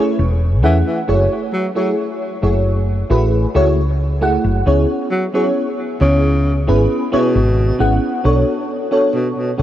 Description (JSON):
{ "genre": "vaporwave", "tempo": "67 BPM", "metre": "4/4", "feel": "straight", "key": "unclear", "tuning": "A4 = 443 Hz", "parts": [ { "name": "mellow FM electric piano", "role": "accompaniment", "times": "0.0-9.6 s", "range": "A3 to F#5", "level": "-17 LUFS", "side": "equal", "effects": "ensemble chorus, tape echo" }, { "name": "woody fretless electric bass", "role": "bass", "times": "0.2-9.6 s", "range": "E1 to E2", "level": "-15 LUFS", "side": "equal", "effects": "none" }, { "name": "breathy tenor saxophone", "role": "melody", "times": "0.6-9.5 s", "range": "B2 to F#3", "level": "-22 LUFS", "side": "equal", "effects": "vintage 12-bit sampler grit, tape echo" } ], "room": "light reverb, small room ambience", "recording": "cassette tape", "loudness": "-14 LUFS", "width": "side -12 dB against mid", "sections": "0.0-9.6 A section", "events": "none", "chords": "0.0 Amaj7; 1.1 F#m9; 4.7 C#m7; 8.2 Bm9" }